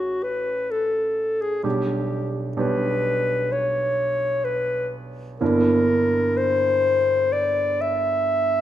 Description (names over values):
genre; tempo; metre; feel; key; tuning
classical, romantic duo for clarinet and grand piano; 63 BPM; 4/4; rubato; unclear; A4 = 440 Hz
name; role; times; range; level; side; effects
warm clarinet; melody; 0.0-8.6 s; F#4 to E5; -21 LUFS; left 1 dB; none
clear grand piano; accompaniment; 0.0-8.6 s; G1 to G4; -25 LUFS; right 2 dB; none
room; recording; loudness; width
wet recital hall reverb, RT60 1.4 s; none; -20 LUFS; side -11 dB against mid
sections
0.0-8.6 A section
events
none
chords
0.0 F#m/A; 1.6 G/B; 5.4 Em7b5/G